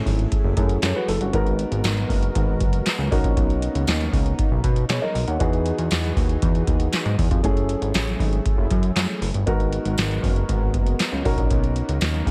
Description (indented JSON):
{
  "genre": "early-eighties boogie funk",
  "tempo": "118 BPM",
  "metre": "4/4",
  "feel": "straight",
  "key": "B major",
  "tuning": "A4 = 440 Hz",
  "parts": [
    { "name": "dark grand piano", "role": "accompaniment", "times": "0.0-12.3 s", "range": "A3 to F#5", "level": "-30 LUFS", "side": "equal", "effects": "none" },
    { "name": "warm analog pad", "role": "sustained chords", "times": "0.0-12.3 s", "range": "E3 to A#4", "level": "-34 LUFS", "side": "equal", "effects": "chorus, tremolo" },
    { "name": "fat analog bass", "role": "bass", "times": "0.1-12.3 s", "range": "F#1 to B2", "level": "-26 LUFS", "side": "equal", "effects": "none" },
    { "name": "booming analog drum machine", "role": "drums", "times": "0.1-12.3 s", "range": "handclaps, hi-hat, kick drum, snare drum", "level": "-25 LUFS", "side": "equal", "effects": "gated reverb" },
    { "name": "tambourine", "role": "percussion", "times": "0.8-12.1 s", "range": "none", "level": "-38 LUFS", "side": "equal", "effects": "none" }
  ],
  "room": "little or no reverb",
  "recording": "none",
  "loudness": "-22 LUFS",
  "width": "mono",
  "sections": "0.0-12.3 A section",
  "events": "none",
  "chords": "0.0 F#m9; 1.3 G#m9; 3.1 Bmaj9; 5.4 Emaj9; 7.4 F#m9; 9.5 G#m9; 11.2 Bmaj9"
}